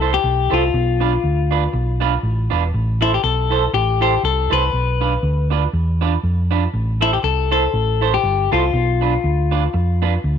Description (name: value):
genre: ska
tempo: 120 BPM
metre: 4/4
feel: swing 57% on 8ths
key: unclear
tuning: A4 = 439 Hz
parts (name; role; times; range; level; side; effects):
- clean electric guitar; melody; 0.0-10.4 s; E4 to B4; -20 LUFS; left 12 dB; none
- clean electric guitar; accompaniment; 0.0-10.1 s; D4 to C5; -23 LUFS; right 15 dB; wide subtle chorus
- hollow-body short-scale fingered electric bass; bass; 0.0-10.4 s; E1 to F2; -19 LUFS; equal; none
room: little or no reverb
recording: 1960s-style stereo with parts hard left and right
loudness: -16 LUFS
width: side -8 dB against mid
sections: 0.0-10.4 A section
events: none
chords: 0.0 Am; 0.7 Bdim; 2.7 Am; 4.7 Bdim; 6.7 Am; 8.7 Bdim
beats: 0.23 | 0.73 1.23 1.73 2.23 | 2.73 3.23 3.73 4.23 | 4.73 5.23 5.73 6.23 | 6.73 7.23 7.73 8.23 | 8.73 9.23 9.73 10.23